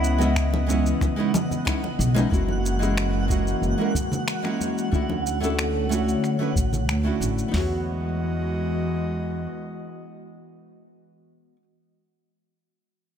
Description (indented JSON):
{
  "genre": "sunset chillout",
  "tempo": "92 BPM",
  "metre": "4/4",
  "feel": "straight",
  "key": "unclear",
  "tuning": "A4 = 441 Hz",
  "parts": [
    { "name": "semi-hollow electric guitar", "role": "melody", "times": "0.0-1.6 s", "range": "E4", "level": "-34 LUFS", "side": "left 2 dB", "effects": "tape echo" },
    { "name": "nylon-string guitar", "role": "accompaniment", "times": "0.0-11.6 s", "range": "G#3 to D#5", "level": "-27 LUFS", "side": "moving between left 4 dB and right 3 dB", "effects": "auto-pan, digital delay" },
    { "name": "airy breathy pad", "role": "sustained chords", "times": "0.0-10.9 s", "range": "C#3 to D#5", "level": "-29 LUFS", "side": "equal", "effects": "chorus" },
    { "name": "upright bass", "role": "bass", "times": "0.0-9.5 s", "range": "F#1 to E2", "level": "-25 LUFS", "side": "equal", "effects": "none" },
    { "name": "electronic shaker and finger snaps", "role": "drums", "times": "0.0-7.5 s", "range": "none", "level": "-32 LUFS", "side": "left 1 dB", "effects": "overdrive" },
    { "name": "twinkling granular texture", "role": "texture", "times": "0.0-7.5 s", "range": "F#5", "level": "-34 LUFS", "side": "right 3 dB", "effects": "built-in reverb" },
    { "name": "congas", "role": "percussion", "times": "0.2-7.3 s", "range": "none", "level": "-31 LUFS", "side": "left 1 dB", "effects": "none" },
    { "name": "soft vintage rhythm box", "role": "drums", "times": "0.4-7.7 s", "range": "hi-hat, kick drum, snare drum, toms", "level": "-25 LUFS", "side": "equal", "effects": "none" }
  ],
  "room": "light reverb",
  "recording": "none",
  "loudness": "-21 LUFS",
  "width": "side -8 dB against mid",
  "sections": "0.0-2.3 A section; 2.3-7.5 B section; 7.5-10.1 C section",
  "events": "filter sweep on upright bass 2.3-7.5; filter sweep on analog synth pad 2.3-7.5",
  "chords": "0.0 C#m9; 2.3 F#9; 4.9 Dmaj7; 7.5 Emaj9"
}